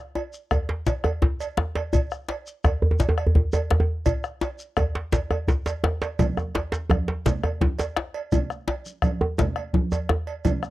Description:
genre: west african traditional, West African drum ensemble.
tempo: 113 BPM (dotted quarters).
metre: 12/8.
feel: straight.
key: none.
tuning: none.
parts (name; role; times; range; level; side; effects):
cowbell; percussion; 0.2-10.6 s; none; -33 LUFS; right 7 dB; none.
djembe; percussion; 0.2-10.6 s; none; -26 LUFS; left 2 dB; none.
shekere; percussion; 0.3-10.7 s; none; -30 LUFS; left 1 dB; none.
bombo; percussion; 0.5-10.7 s; none; -24 LUFS; left 1 dB; none.
djembe; percussion; 0.5-10.3 s; none; -24 LUFS; right 1 dB; none.
congas; percussion; 6.2-10.6 s; none; -28 LUFS; right 4 dB; none.
room: little or no reverb.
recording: dry, close 1970s-style studio recording.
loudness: -22 LUFS.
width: side -16 dB against mid.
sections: 0.0-10.7 A section.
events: none.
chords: none.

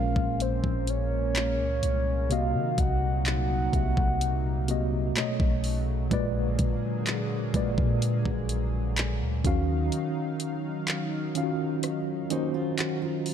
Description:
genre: contemporary R&B.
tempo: 63 BPM.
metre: 4/4.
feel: straight.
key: Bb minor.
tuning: A4 = 440 Hz.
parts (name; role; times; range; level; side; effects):
soft octave-layered synth lead; melody; 0.0-5.1 s; C5 to Gb5; -31 LUFS; equal; chorus, phaser.
mellow tine electric piano; accompaniment; 0.0-13.3 s; Bb2 to Gb5; -29 LUFS; equal; medium stereo tremolo.
chorused pulse-width pad; sustained chords; 0.0-13.3 s; Bb2 to F5; -36 LUFS; equal; sidechain pumping.
long sustained 808-style bass; bass; 0.0-9.9 s; Bb1 to Eb3; -29 LUFS; equal; none.
impact; sound effects; 0.0-2.3 s; none; barely audible; none; none.
smooth R&B drum kit; drums; 0.2-13.3 s; handclaps, hi-hat, kick drum, rim click; -29 LUFS; equal; none.
fingerpicked steel-string acoustic guitar; arpeggios; 12.3-13.3 s; Bb3 to Bb4; -35 LUFS; right 8 dB; none.
room: little or no reverb.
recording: dark, warm production.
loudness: -25 LUFS.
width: side -8 dB against mid.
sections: 0.0-13.3 A section.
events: impact 0.0-2.3; break 9.9-13.3.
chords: 0.0 Bbm9; 2.3 Cm7b5; 5.2 B9; 6.1 Bb7b9; 9.4 Ebm9.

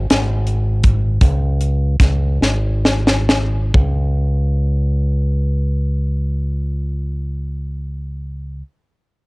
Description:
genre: slow gospel.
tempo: 42-55 BPM (dotted quarters).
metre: 6/8.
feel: straight.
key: unclear.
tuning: A4 = 441 Hz.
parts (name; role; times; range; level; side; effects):
fingered electric bass with an envelope filter; bass; 0.0-8.6 s; G#1 to C#2; -17 LUFS; equal; none.
crisp fusion drum kit; drums; 0.1-4.0 s; hi-hat, kick drum, snare drum; -15 LUFS; equal; cassette tape.
room: little or no reverb.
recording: home recording on cassette.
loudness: -15 LUFS.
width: side -26 dB against mid.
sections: 0.0-3.7 A section; 3.7-9.3 B section.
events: slowing down 0.0-3.7; drum fill 2.4-3.7.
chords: none.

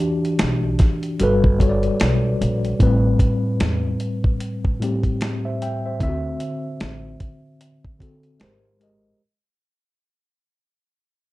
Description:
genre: lo-fi hip hop.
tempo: 75 BPM.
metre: 4/4.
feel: swing 60% on 16ths.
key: unclear.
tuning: A4 = 440 Hz.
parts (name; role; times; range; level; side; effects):
mellow tine electric piano; accompaniment; 0.0-9.2 s; A2 to G5; -21 LUFS; left 1 dB; medium stereo tremolo, cassette tape.
dusty soul sampler-style drum kit; drums; 0.2-9.0 s; finger snaps, hi-hat, kick drum, snare drum; -20 LUFS; equal; none.
upright bass; bass; 0.4-9.1 s; G1 to E2; -23 LUFS; equal; none.
room: light reverb.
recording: dark, warm production.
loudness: -18 LUFS.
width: side -18 dB against mid.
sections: 0.0-2.8 A section; 2.8-9.2 B section.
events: fade-out 2.8-9.2.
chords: 0.0 Em9; 1.2 Gmaj9; 2.8 Am9; 6.0 D9; 8.4 Abmaj9.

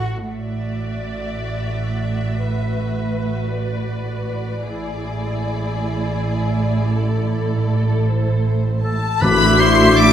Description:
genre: cinematic, emotional film score for orchestra.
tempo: 54 BPM (dotted quarters).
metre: 6/8.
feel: rubato.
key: unclear.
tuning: A4 = 441 Hz.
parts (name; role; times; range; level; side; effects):
rich studio violin section; melody; 0.0-10.1 s; C5 to D6; -25 LUFS; left 3 dB; none.
dark studio cello section; bass; 0.0-10.1 s; A2 to F#4; -26 LUFS; right 3 dB; none.
rich studio double bass section; bass; 0.0-10.1 s; A1; -21 LUFS; right 2 dB; none.
warm studio violin section; second line; 0.3-10.1 s; E4 to E5; -27 LUFS; left 4 dB; none.
rich studio viola section; accompaniment; 0.3-10.1 s; A3 to F#4; -30 LUFS; right 1 dB; none.
warm oboe; second line; 8.8-10.1 s; A4 to D5; -21 LUFS; equal; none.
clear clarinet; second line; 9.2-10.1 s; F#4; -22 LUFS; left 1 dB; none.
mellow large flute ensemble; second line; 9.2-10.1 s; D6; -22 LUFS; left 2 dB; none.
mellow French horn section; sustained chords; 9.2-10.1 s; D4 to F#4; -19 LUFS; left 4 dB; none.
timpani; percussion; 9.2-10.1 s; A2; -21 LUFS; left 3 dB; none.
room: wet scoring stage reverb, RT60 1.7 s.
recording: none.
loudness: -17 LUFS.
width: side -9 dB against mid.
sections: 0.3-9.2 A section.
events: none.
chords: 0.3 Dadd9/A; 4.7 E7/A; 9.2 Dadd9/A.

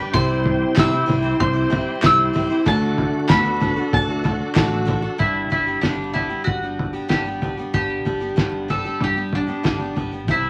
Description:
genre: indie folk with a building arrangement.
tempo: 95 BPM.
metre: 4/4.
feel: straight.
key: G major.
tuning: A4 = 436 Hz.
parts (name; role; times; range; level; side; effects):
picked steel-string acoustic guitar; accompaniment; 0.0-10.5 s; G2 to C5; -27 LUFS; equal; none.
tonewheel organ; sustained chords; 0.0-5.2 s; D4 to G5; -31 LUFS; equal; chorus vibrato, slow rotary speaker.
mandolin; melody; 0.1-10.5 s; D4 to E6; -25 LUFS; equal; none.
mellow trombone; second line; 0.1-4.9 s; A3 to E4; -29 LUFS; equal; none.
fingered electric bass; bass; 0.1-10.5 s; G1 to C3; -30 LUFS; equal; none.
cloth-damped thuddy drum kit; drums; 0.1-10.4 s; kick drum, snare drum, toms; -24 LUFS; equal; none.
group handclap; percussion; 0.8-4.7 s; none; -31 LUFS; equal; none.
tambourine; percussion; 0.8-4.7 s; none; -42 LUFS; equal; none.
room: wet studio ambience, RT60 0.5 s.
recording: vinyl crackle.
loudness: -20 LUFS.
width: mono.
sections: 0.0-5.2 A section; 5.2-10.5 B section.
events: none.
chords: 0.1 C; 2.7 D; 5.2 G.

